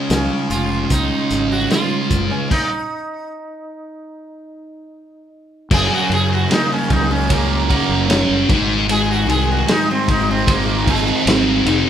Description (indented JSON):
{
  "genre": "psychedelic rock",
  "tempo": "75 BPM",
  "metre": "4/4",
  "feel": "straight",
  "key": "unclear",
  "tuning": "A4 = 441 Hz",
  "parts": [
    { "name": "tonewheel organ", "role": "sustained chords", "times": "0.0-11.9 s", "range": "Eb4 to C6", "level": "-32 LUFS", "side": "right 4 dB", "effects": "none" },
    { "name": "thick fuzz guitar", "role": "riff", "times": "0.0-11.9 s", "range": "Gb2 to Gb4", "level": "-18 LUFS", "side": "equal", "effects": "distortion, phaser" },
    { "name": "sitar", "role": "melody", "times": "0.1-11.3 s", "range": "Ab3 to Ab4", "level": "-23 LUFS", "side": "right 2 dB", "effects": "none" },
    { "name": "fuzz fingered electric bass", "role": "bass", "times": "0.1-11.8 s", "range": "F1 to Gb2", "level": "-22 LUFS", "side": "equal", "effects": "overdrive" },
    { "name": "vintage drum kit", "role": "drums", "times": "0.1-11.8 s", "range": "crash cymbal, hi-hat, kick drum, ride cymbal, snare drum", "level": "-20 LUFS", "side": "equal", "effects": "none" }
  ],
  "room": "light reverb",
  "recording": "band playing live in one room",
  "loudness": "-14 LUFS",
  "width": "side -9 dB against mid",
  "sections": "0.0-5.7 A section; 5.7-11.9 B section",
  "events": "stop 2.5-5.7; sitar solo 5.7-11.9",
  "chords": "0.0 Dbadd9; 2.5 N.C.; 5.7 Gb; 8.5 Ab7",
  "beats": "0.10 0.91 1.71 | 2.51 3.31 4.11 4.91 | 5.71 6.51 7.30 8.10 | 8.89 9.69 10.48 11.27"
}